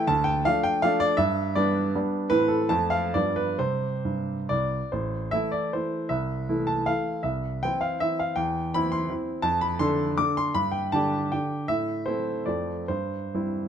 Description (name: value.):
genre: classical, romantic triple-time dance for piano with dotted rhythms.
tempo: 127-178 BPM.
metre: 3/4.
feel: rubato.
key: C major, A minor from 4.9 s.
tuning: A4 = 439 Hz.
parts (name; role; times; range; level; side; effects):
warm grand piano; solo; 0.0-13.7 s; A1 to D6; -24 LUFS; equal; none.
room: light reverb.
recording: dark, warm production.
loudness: -24 LUFS.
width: side -8 dB against mid.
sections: 0.0-4.9 A section; 4.9-13.7 B section.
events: none.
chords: 0.1 Dm; 1.2 G; 2.3 Am; 2.7 F; 3.1 G7; 3.6 C5; 4.9 Am; 6.1 Am/C; 7.2 C; 8.4 C/E; 9.4 Dm7/F; 10.5 G5; 11.7 Am; 12.5 Dm7/F; 12.9 C/G.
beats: | 0.07 0.45 0.83 | 1.18 1.55 1.95 | 2.31 2.69 3.14 | 3.58 4.04 4.50 | 4.92 5.32 5.73 | 6.10 6.49 6.88 | 7.25 7.62 8.00 | 8.37 8.73 9.10 | 9.45 9.80 10.17 | 10.54 10.92 11.32 | 11.68 12.06 12.47 | 12.89 13.34.